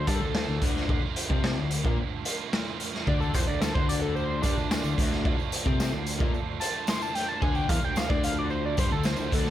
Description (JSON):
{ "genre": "indie rock", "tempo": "110 BPM", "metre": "4/4", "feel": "straight", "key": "D minor", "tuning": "A4 = 440 Hz", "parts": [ { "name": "overdriven synth lead", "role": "melody", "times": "0.0-9.5 s", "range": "D4 to C6", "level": "-32 LUFS", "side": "equal", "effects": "distortion, chorus" }, { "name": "biting overdriven guitar", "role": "riff", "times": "0.0-9.5 s", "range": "D3 to F4", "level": "-34 LUFS", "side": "right 9 dB", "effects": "ensemble chorus" }, { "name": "raw garage guitar", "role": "riff", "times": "0.0-9.5 s", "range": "D3 to C4", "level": "-33 LUFS", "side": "left 9 dB", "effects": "overdrive" }, { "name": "fuzz fingered electric bass", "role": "bass", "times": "0.0-9.5 s", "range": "D2 to C3", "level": "-31 LUFS", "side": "right 1 dB", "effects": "overdrive" }, { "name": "raw garage drum kit", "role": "drums", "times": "0.1-9.5 s", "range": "hi-hat, kick drum, snare drum", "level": "-28 LUFS", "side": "equal", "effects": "none" }, { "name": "dark analog pad", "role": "sustained chords", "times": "3.1-9.5 s", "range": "F4 to A5", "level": "-44 LUFS", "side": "right 2 dB", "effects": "none" }, { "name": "tambourine", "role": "percussion", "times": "3.2-9.5 s", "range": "none", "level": "-46 LUFS", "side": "left 11 dB", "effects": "none" } ], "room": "little or no reverb", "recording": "none", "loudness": "-25 LUFS", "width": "side -12 dB against mid", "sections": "0.0-9.5 A section", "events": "analog synth lead solo 0.0-9.5", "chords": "0.0 Dm" }